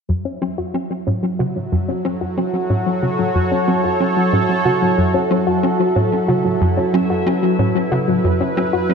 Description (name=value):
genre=ambient, sequencer-driven space music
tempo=92 BPM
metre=4/4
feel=straight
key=unclear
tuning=A4 = 436 Hz
part: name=sweeping resonant pad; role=sustained chords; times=0.1-8.9 s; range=F#3 to C#5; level=-19 LUFS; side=right 1 dB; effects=chorus
part: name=soft round pluck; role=arpeggios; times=0.1-8.9 s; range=F#3 to F#4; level=-21 LUFS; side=left 2 dB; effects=chorus, auto-pan, tape echo
part: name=tight sequencer bass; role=riff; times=0.1-8.9 s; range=F#2 to C#4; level=-21 LUFS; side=equal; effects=ensemble chorus, tape echo
part: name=bubbling stepped-filter texture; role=texture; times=0.1-8.9 s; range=E4 to E5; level=-31 LUFS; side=equal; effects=chorus, built-in reverb
room=wet concert hall reverb, RT60 2.0 s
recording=none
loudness=-16 LUFS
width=side -6 dB against mid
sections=0.1-8.9 A section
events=fade-in on synth texture 0.1-8.9; filter sweep on analog synth bass 0.1-8.9; filter sweep on synth arpeggio sound 0.1-8.9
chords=0.1 F#m